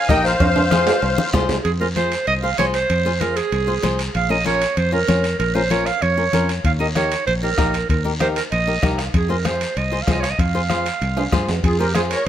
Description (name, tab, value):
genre	latin, cumbia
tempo	192 BPM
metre	4/4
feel	straight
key	F minor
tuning	A4 = 439 Hz
part	musette accordion	melody	0.0-1.3, 11.6-12.3 s	Ab4 to G5	-21 LUFS	left 2 dB	none
part	clear clarinet	second line	0.0-12.3 s	F4 to F5	-22 LUFS	right 4 dB	none
part	flamenco guitar	accompaniment	0.1-12.2 s	Db4 to Db5	-25 LUFS	left 4 dB	none
part	fingered electric bass	bass	0.1-12.1 s	Bb1 to G2	-22 LUFS	equal	none
part	bombo	percussion	0.1-1.5, 6.6-12.1 s	none	-23 LUFS	left 1 dB	none
part	congas	percussion	0.1-12.1 s	none	-27 LUFS	left 3 dB	none
part	guiro	percussion	0.1-12.3 s	none	-32 LUFS	left 2 dB	none
part	cowbell and timbales	percussion	0.4-12.3 s	none	-27 LUFS	right 4 dB	none
room	light reverb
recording	none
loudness	-17 LUFS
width	side -10 dB against mid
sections	0.0-1.7 A section; 1.7-11.6 B section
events	drum fill 0.4-1.7, 11.2-11.6; clarinet solo 1.7-11.6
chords	0.4 Fm; 4.1 Bbm; 6.6 Eb; 9.1 Fm